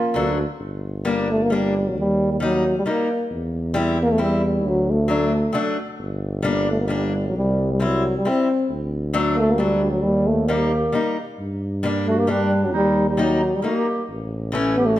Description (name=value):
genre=alpine folk, alpine dance band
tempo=134 BPM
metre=3/4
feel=swing 55% on 8ths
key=G harmonic minor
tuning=A4 = 442 Hz
part: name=warm euphonium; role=melody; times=0.0-15.0 s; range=F#3 to C4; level=-21 LUFS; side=equal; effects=none
part: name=warm clarinet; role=second line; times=0.0-0.3, 10.5-15.0 s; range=D4 to G4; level=-28 LUFS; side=right 4 dB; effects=none
part: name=fingerpicked acoustic archtop guitar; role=accompaniment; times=0.1-15.0 s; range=E3 to E4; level=-24 LUFS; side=left 2 dB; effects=none
part: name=warm tuba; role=bass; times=0.1-15.0 s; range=G1 to G2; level=-24 LUFS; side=equal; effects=none
room=moderate recital hall reverb, RT60 1.7 s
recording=none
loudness=-19 LUFS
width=side -14 dB against mid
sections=0.6-15.0 A section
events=none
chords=0.1 D; 0.6 Gm; 2.0 Eb; 3.3 C/E; 4.6 D; 6.0 Gm; 7.4 C; 8.7 D; 10.0 Eb; 11.4 Gm; 12.7 Eb; 14.1 A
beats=0.14 | 0.60 1.05 1.50 | 1.95 2.40 2.85 | 3.30 3.75 4.20 | 4.64 5.09 5.54 | 6.00 6.45 6.91 | 7.35 7.80 8.25 | 8.69 9.14 9.58 | 10.03 10.48 10.94 | 11.39 11.84 12.29 | 12.74 13.19 13.63 | 14.08 14.53 14.97